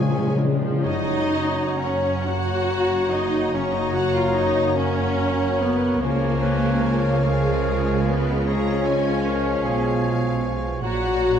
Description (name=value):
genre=classical, slow romantic movement for symphony orchestra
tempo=40-52 BPM (dotted quarters)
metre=12/8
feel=rubato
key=F# major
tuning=A4 = 439 Hz
part: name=dark symphonic violin section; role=melody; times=0.0-11.4 s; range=E#5 to A#5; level=-36 LUFS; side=left 6 dB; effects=none
part: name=clear clarinet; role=second line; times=0.0-11.4 s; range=F#4 to C#5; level=-31 LUFS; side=left 2 dB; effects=none
part: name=concert flute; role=second line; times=0.0-11.4 s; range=G#5 to C#6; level=-34 LUFS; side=left 1 dB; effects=none
part: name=rich symphonic violin section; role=second line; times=0.0-11.4 s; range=G#4 to F#5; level=-33 LUFS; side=left 1 dB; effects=none
part: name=warm oboe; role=second line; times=0.0-11.4 s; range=G#4 to C#5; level=-33 LUFS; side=right 2 dB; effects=none
part: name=mellow bassoon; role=accompaniment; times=0.0-11.4 s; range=E#3 to F#3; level=-31 LUFS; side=right 2 dB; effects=none
part: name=rich symphonic viola section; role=accompaniment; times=0.0-11.4 s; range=E#3 to F#4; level=-25 LUFS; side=equal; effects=none
part: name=mellow French horn section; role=sustained chords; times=0.0-11.4 s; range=F#3 to F#4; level=-30 LUFS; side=left 3 dB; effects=none
part: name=concert harp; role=arpeggios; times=0.0-11.4 s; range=F#2 to C#6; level=-30 LUFS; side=left 6 dB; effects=none
part: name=timpani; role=percussion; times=0.0-7.2 s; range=C#3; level=-24 LUFS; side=left 1 dB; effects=none
part: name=rich symphonic double bass section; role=bass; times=0.8-11.4 s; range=F#1 to C#2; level=-28 LUFS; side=right 3 dB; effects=none
part: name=warm symphonic cello section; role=bass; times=0.8-11.4 s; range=F#2 to C#3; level=-29 LUFS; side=right 2 dB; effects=none
room=moderate scoring stage reverb, RT60 2.1 s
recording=dark, warm production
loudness=-19 LUFS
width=side -8 dB against mid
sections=0.8-11.4 A section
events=timpani fill 0.0-0.8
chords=0.0 C#; 0.8 F#; 6.0 C#; 10.8 F#/A#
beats=| 0.84 2.28 3.54 4.78 | 6.02 7.25 8.47 9.65 | 10.83